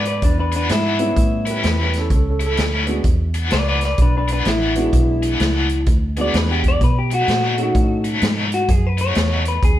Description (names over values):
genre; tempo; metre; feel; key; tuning
electric blues shuffle; 128 BPM; 4/4; swing 63% on 8ths; E mixolydian; A4 = 439 Hz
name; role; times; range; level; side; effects
electric guitar through a small old amp; melody; 0.0-9.8 s; D4 to D5; -22 LUFS; left 1 dB; none
overdriven electric guitar; riff; 0.0-9.5 s; A2 to G#4; -24 LUFS; left 3 dB; tremolo
vintage muted fingered electric bass; bass; 0.0-9.8 s; A1 to B2; -20 LUFS; equal; none
vintage drum kit; drums; 0.1-9.8 s; hi-hat, kick drum, snare drum; -20 LUFS; equal; none
warm upright piano; accompaniment; 1.0-8.2 s; G3 to F#4; -25 LUFS; right 2 dB; none
warm upright piano; second line; 1.5-2.9 s; C#4 to B4; -26 LUFS; right 4 dB; none
room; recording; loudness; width
light reverb; band playing live in one room; -16 LUFS; side -13 dB against mid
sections
0.0-9.8 A section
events
none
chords
0.0 E7; 1.2 A7; 3.0 E7; 6.8 B7